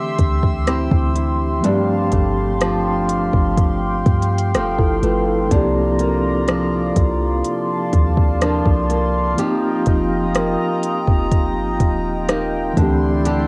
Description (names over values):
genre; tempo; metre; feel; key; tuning
contemporary R&B; 62 BPM; 4/4; straight; C dorian; A4 = 440 Hz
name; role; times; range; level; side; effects
mellow tine electric piano; accompaniment; 0.0-13.5 s; E3 to B4; -24 LUFS; equal; plate reverb
chorused pulse-width pad; sustained chords; 0.0-13.5 s; E4 to E6; -26 LUFS; equal; plate reverb
nylon-string guitar; arpeggios; 0.0-13.5 s; G2 to G4; -26 LUFS; equal; analog delay, plate reverb
clean 808-style bass; bass; 0.2-13.5 s; Eb1 to G2; -24 LUFS; equal; none
smooth R&B drum kit; drums; 0.2-13.5 s; hi-hat, kick drum, rim click; -21 LUFS; equal; cassette tape
room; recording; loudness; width
light reverb; home recording on cassette; -18 LUFS; mono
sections
0.0-13.5 A section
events
none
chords
0.0 D9sus4; 1.6 G9sus4; 5.5 C9sus4; 9.4 F9sus4; 12.8 D9sus4